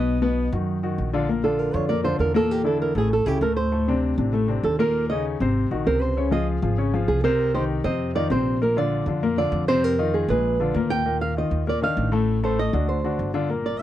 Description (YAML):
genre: Afro-Cuban jazz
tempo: 197 BPM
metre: 4/4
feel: straight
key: Bb major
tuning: A4 = 439 Hz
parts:
  - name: flamenco guitar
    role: melody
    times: 0.0-13.8 s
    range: G4 to G5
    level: -24 LUFS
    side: right 4 dB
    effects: none
  - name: warm baby grand piano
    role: accompaniment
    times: 0.0-13.8 s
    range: A2 to Db5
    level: -24 LUFS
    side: left 4 dB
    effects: none
  - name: upright bass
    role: bass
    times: 0.0-13.8 s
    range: G1 to F#2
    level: -26 LUFS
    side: right 1 dB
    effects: none
room: little or no reverb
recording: dry, close 1970s-style studio recording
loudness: -20 LUFS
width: side -12 dB against mid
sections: 0.0-1.3 A section; 1.3-11.1 B section; 11.1-13.8 B section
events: nylon-string guitar solo 1.3-13.8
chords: 0.1 B; 1.3 Bb; 2.5 Gm69; 3.1 A; 3.7 D5; 4.9 Eb5; 5.6 Ab9; 6.2 Dbmaj7; 7.4 Cm; 8.0 F5; 8.6 Bbadd9; 9.8 Fm7; 10.4 Bb7; 11.1 Ebsus2; 12.3 D7b9/A; 12.9 D7#9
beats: | 0.07 0.37 0.68 0.98 | 1.28 1.59 1.90 2.20 | 2.50 2.81 3.12 3.42 | 3.73 4.03 4.34 4.64 | 4.95 5.25 5.56 5.86 | 6.17 6.47 6.78 7.08 | 7.39 7.69 8.00 8.30 | 8.61 8.91 9.22 9.53 | 9.83 10.13 10.44 10.75 | 11.05 11.36 11.66 11.97 | 12.28 12.58 12.89 13.19 | 13.50 13.80